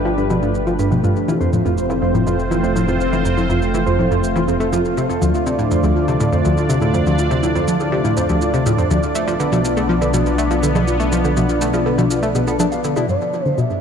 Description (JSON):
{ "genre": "ambient, sequencer-driven space music", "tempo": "122 BPM", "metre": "4/4", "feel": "straight", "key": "F lydian", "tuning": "A4 = 440 Hz", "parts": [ { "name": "sweeping resonant pad", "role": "sustained chords", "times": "0.0-13.8 s", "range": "A3 to D5", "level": "-20 LUFS", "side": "equal", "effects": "chorus" }, { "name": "fat analog bass", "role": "bass", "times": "0.0-13.1 s", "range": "F1 to D2", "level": "-24 LUFS", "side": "equal", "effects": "none" }, { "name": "mellow electric guitar", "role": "arpeggios", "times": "0.1-13.0 s", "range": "F3 to F5", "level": "-23 LUFS", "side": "right 1 dB", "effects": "auto-pan, ping-pong delay" }, { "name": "analog pluck", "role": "riff", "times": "0.1-13.8 s", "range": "D2 to D4", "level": "-19 LUFS", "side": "left 1 dB", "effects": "chorus, ping-pong delay" }, { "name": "shaker and bongos", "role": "percussion", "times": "0.2-13.8 s", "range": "none", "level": "-32 LUFS", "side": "right 2 dB", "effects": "ping-pong delay" }, { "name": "expressive synth lead", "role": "melody", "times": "13.1-13.8 s", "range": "D5 to E5", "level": "-22 LUFS", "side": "right 1 dB", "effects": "analog chorus, cassette tape" } ], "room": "wet huge ambient reverb, RT60 8.6 s", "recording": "none", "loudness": "-15 LUFS", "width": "side -7 dB against mid", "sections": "0.0-13.1 A section", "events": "fade-in on drum 0.0-13.1", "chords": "0.0 Gadd9; 1.3 F; 5.2 Dm; 9.2 Bm; 13.1 G" }